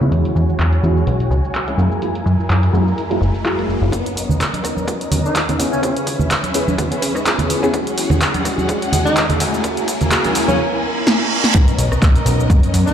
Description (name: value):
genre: filtered disco house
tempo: 126 BPM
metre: 4/4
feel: swing 55% on 16ths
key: B major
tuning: A4 = 441 Hz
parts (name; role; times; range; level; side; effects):
- dark grand piano; accompaniment; 0.0-12.9 s; F#3 to A#4; -22 LUFS; left 1 dB; phaser, sidechain pumping, low-pass filter
- warm studio string section; sustained chords; 0.0-12.9 s; C#4 to G#5; -25 LUFS; equal; sidechain pumping, low-pass filter
- plucky analog bass; bass; 0.0-12.8 s; F#1 to C#3; -18 LUFS; equal; sidechain pumping, high-pass filter, low-pass filter
- punchy analog drum machine; drums; 0.0-12.9 s; cabasa, handclaps, hi-hat, rim click, snare drum; -21 LUFS; equal; sidechain pumping on hats, low-pass filter on hats, sidechain pumping on perc, low-pass filter on perc, low-pass filter on snare
- riser and reverse cymbal; sound effects; 1.2-11.5 s; none; -26 LUFS; right 2 dB; none
- electronic kick drum; drums; 3.9-12.6 s; none; -18 LUFS; equal; high-pass filter on kick
- tambourine and congas; percussion; 3.9-10.6 s; none; -21 LUFS; right 2 dB; sidechain pumping on perc, low-pass filter on perc
- dark horn section; melody; 5.2-12.9 s; C#3 to D#4; -22 LUFS; equal; sidechain pumping, low-pass filter, dub echo
room: light reverb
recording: played on a big sound system in a bare room, large studio reverb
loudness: -14 LUFS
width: side -9 dB against mid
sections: 0.0-3.9 A section; 3.9-11.5 B section; 11.5-12.9 C section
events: filter sweep 0.0-3.9, 3.9-11.5; riser 1.2-3.9, 3.9-10.6; build-up 3.9-11.5; filter sweep on horn section 3.9-11.5; reverse cymbal 10.6-11.5; drum fill 11.1-11.5; drop 11.5-12.9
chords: 0.1 E69; 1.8 F#9; 3.9 Bmaj9; 5.6 C#m7; 7.7 E69; 9.4 F#9; 11.5 Bmaj9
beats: | 0.12 0.59 1.07 1.55 | 2.02 2.50 2.98 3.45 | 3.93 4.40 4.88 5.36 | 5.83 6.31 6.79 7.26 | 7.74 8.21 8.69 9.17 | 9.64 10.12 10.60 11.07 | 11.55 12.02 12.50